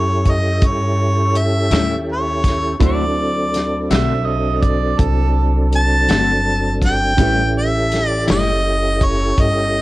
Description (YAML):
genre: slow blues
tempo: 55 BPM (dotted quarters)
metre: 12/8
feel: straight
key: A mixolydian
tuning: A4 = 441 Hz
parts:
  - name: clear harmonica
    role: melody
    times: 0.0-9.8 s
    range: C#5 to A5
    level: -19 LUFS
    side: equal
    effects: cassette tape
  - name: dark upright piano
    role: accompaniment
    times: 0.0-9.8 s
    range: C#4 to C#5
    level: -28 LUFS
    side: right 7 dB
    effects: none
  - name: tonewheel organ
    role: sustained chords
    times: 0.0-9.8 s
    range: F#3 to A4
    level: -22 LUFS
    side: equal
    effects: chorus vibrato, slow rotary speaker
  - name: upright bass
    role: bass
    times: 0.0-9.8 s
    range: F#1 to G2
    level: -19 LUFS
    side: equal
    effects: none
  - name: warm soul drum kit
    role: drums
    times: 0.3-9.5 s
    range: hi-hat, kick drum, snare drum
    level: -18 LUFS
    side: equal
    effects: cassette tape
  - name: clean electric guitar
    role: accompaniment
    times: 1.7-8.5 s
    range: A2 to F#4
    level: -23 LUFS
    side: left 6 dB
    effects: harmonic tremolo
  - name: mellow harmonica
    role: second line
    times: 3.9-5.5 s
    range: A4 to E5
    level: -23 LUFS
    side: right 8 dB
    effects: overdrive, analog delay
room: light reverb, studio reverb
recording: home recording on cassette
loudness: -14 LUFS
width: side -18 dB against mid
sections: 0.0-9.8 A section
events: none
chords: 0.0 A7; 2.8 D7; 7.2 A7